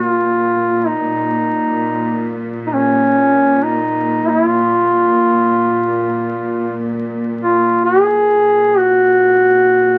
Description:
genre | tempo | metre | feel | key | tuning
caucasian folk, Caucasian lament | free time | none | none | Bb minor | A4 = 440 Hz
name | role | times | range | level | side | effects
warm duduk | melody | 0.0-10.0 s | Db4 to Ab4 | -15 LUFS | equal | none
dark chamber cello section | drone | 0.0-10.0 s | Bb2 | -23 LUFS | equal | none
room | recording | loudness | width
moderate studio reverb, RT60 0.6 s | very old 78 rpm record, vinyl crackle | -15 LUFS | mono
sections
0.0-10.0 A section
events
none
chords
none

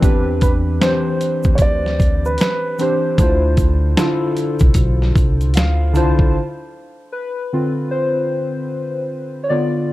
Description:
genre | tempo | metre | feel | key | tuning
lo-fi hip hop | 76 BPM | 4/4 | swing 62% on 16ths | D dorian | A4 = 440 Hz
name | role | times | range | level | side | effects
warbly lo-fi synth keys | accompaniment | 0.0-9.9 s | D3 to A5 | -20 LUFS | left 1 dB | chorus, cassette tape
upright bass | bass | 0.0-6.3 s | B1 to E2 | -18 LUFS | equal | none
dusty soul sampler-style drum kit | drums | 0.0-6.3 s | hi-hat, kick drum, snare drum | -16 LUFS | equal | none
egg shaker | percussion | 0.0-6.2 s | none | -43 LUFS | right 6 dB | none
dark upright piano | melody | 0.4-5.5 s | B4 to D5 | -22 LUFS | right 1 dB | analog delay
room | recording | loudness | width
light reverb, studio reverb | none | -15 LUFS | side -16 dB against mid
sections
0.0-6.3 A section; 6.3-9.9 B section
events
synth keys fill 5.2-6.3; synth keys solo 6.3-9.9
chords
0.0 Cmaj9; 3.2 Dm7

